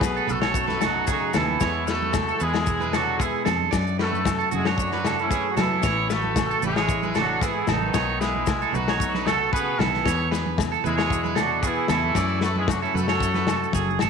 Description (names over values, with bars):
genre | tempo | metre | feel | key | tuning
highlife guitar band | 114 BPM | 4/4 | straight | unclear | A4 = 440 Hz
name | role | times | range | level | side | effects
brilliant horn section | melody | 0.0-14.0 s | D#3 to B4 | -26 LUFS | equal | none
semi-hollow electric guitar | accompaniment | 0.0-14.1 s | F#2 to B4 | -32 LUFS | left 10 dB | none
fingered electric bass | bass | 0.0-14.1 s | F#1 to F#3 | -29 LUFS | equal | none
crunchy breakbeat drum kit | drums | 0.0-14.1 s | kick drum, snare drum | -27 LUFS | left 4 dB | none
agogo bells | percussion | 0.0-14.1 s | none | -34 LUFS | left 13 dB | none
congas | percussion | 0.0-14.1 s | none | -33 LUFS | right 10 dB | none
maracas | percussion | 0.0-14.1 s | none | -39 LUFS | left 15 dB | none
electric guitar at the edge of break-up | arpeggios | 0.2-14.1 s | F#4 to D5 | -26 LUFS | right 12 dB | tape echo
room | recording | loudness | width
moderate echo chamber reverb, RT60 1.4 s, small room ambience | 1960s-style stereo with parts hard left and right | -21 LUFS | side -6 dB against mid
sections
0.0-14.1 A section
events
none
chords
0.0 B7; 1.6 E; 3.7 Dadd9/F#; 5.8 Asus2; 7.9 B7; 10.1 E; 12.2 Dadd9/F#